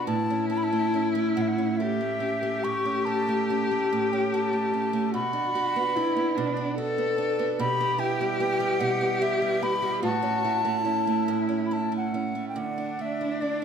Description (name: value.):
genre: celtic folk, Celtic slow air.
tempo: 72 BPM.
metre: 3/4.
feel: uneven beats, rubato.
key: unclear.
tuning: A4 = 443 Hz.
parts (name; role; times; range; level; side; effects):
bright baroque flute; melody; 0.0-13.6 s; D5 to C#6; -29 LUFS; left 1 dB; none.
rich cello; second line; 0.0-13.6 s; D4 to A4; -27 LUFS; left 3 dB; none.
picked acoustic archtop guitar; accompaniment; 0.0-13.6 s; A2 to A4; -29 LUFS; right 5 dB; none.
room: moderate scoring stage reverb, RT60 1.6 s.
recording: none.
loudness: -24 LUFS.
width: side -7 dB against mid.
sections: 0.0-12.6 A section; 12.6-13.6 B section.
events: none.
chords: 0.1 A; 5.1 Bm; 7.6 Em/B; 10.0 A; 12.6 Dsus2.